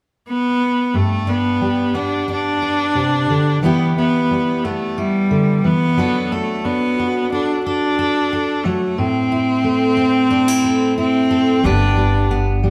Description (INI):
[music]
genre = folk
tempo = 90 BPM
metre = 4/4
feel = straight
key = G major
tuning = A4 = 439 Hz
[part]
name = clear cello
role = melody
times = 0.3-12.7 s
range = G3 to D4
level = -20 LUFS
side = equal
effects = none
[part]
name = fingerpicked steel-string acoustic guitar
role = accompaniment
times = 0.9-12.7 s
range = G2 to B4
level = -22 LUFS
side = equal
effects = none
[part]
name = upright bass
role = bass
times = 11.6-12.7 s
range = G1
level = -20 LUFS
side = equal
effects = none
[sound]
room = wet large studio reverb, RT60 1.5 s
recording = band playing live in one room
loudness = -17 LUFS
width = mono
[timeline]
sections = 0.9-11.6 A section; 11.6-12.7 B section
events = none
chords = 0.0 N.C.; 0.9 G; 3.6 Em; 6.0 D/F#; 9.0 Am; 11.6 G